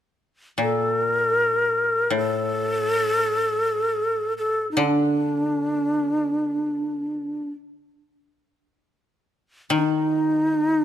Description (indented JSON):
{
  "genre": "japanese traditional, Japanese chamber music",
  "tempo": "free time",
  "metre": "none",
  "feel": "none",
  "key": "unclear",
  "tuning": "A4 = 438 Hz",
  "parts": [
    { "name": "breathy shakuhachi", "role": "melody", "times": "0.6-10.8 s", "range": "D4 to Bb4", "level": "-21 LUFS", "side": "equal", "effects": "none" },
    { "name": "koto", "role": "accompaniment", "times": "0.6-10.8 s", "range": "A2 to Eb3", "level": "-26 LUFS", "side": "left 2 dB", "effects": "none" }
  ],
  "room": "light reverb",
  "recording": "close, detailed microphones",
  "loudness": "-20 LUFS",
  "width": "side -10 dB against mid",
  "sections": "0.0-10.8 A section",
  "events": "none",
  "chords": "none"
}